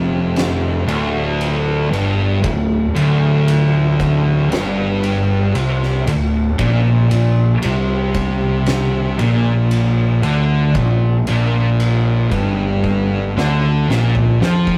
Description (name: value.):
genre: stoner and doom metal.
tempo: 58 BPM.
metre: 4/4.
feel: straight.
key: unclear.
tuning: A4 = 440 Hz.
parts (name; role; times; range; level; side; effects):
thick fuzz guitar; riff; 0.0-14.8 s; D2 to F3; -20 LUFS; equal; distortion.
thick fuzz guitar; riff; 0.0-14.8 s; D2 to F3; -22 LUFS; equal; distortion.
fuzz picked electric bass; bass; 0.0-14.8 s; D1 to F2; -23 LUFS; equal; overdrive.
oversized low-tuned drum kit; drums; 0.4-14.8 s; kick drum, ride cymbal, snare drum, toms; -27 LUFS; equal; none.
room: moderate small room reverb, RT60 0.5 s.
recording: rough rehearsal-room recording, tube saturation.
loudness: -16 LUFS.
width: mono.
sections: 0.0-14.8 A section.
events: drum fill 12.8-14.8.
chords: 0.0 Dm; 6.6 Bb5.